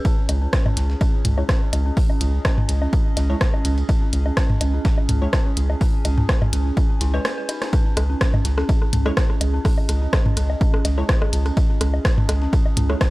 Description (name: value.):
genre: minimal techno.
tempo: 125 BPM.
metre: 4/4.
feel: swing 53% on 16ths.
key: unclear.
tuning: A4 = 440 Hz.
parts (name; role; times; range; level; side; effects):
dark detuned synth bell; riff; 0.0-12.9 s; C#4 to B4; -32 LUFS; left 1 dB; chorus, vintage 12-bit sampler grit, sidechain pumping, low-pass filter, tape echo.
breakbeat sampler-style drum kit; drums; 0.0-13.1 s; hi-hat, ride cymbal, snare drum; -38 LUFS; right 1 dB; sidechain pumping on cymbals, high-pass filter on cymbals, high-pass filter on snare, sidechain pumping on hats, high-pass filter on hats.
electronic kick drum; drums; 0.0-13.1 s; none; -20 LUFS; equal; none.
warbly tape-like pad; texture; 0.0-13.1 s; C#4 to G#5; -31 LUFS; right 3 dB; chorus, built-in reverb, phaser, sidechain pumping.
rubbery square bass; bass; 0.3-13.0 s; C#2; -20 LUFS; equal; sidechain pumping.
minimal click drum kit; drums; 0.3-13.1 s; hi-hat, rim click; -25 LUFS; equal; none.
booming analog drum machine; percussion; 0.3-13.1 s; rim click, toms, woodblock; -25 LUFS; equal; none.
wavetable chord stab; stabs; 1.4-13.0 s; G#3 to C#5; -31 LUFS; left 1 dB; analog delay.
room: little or no reverb.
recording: dry, gritty hardware recording.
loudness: -17 LUFS.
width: side -20 dB against mid.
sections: 0.0-13.1 A section.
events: filter sweep on synth bell 0.0-13.1; break 7.2-7.7.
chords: 0.0 C#5.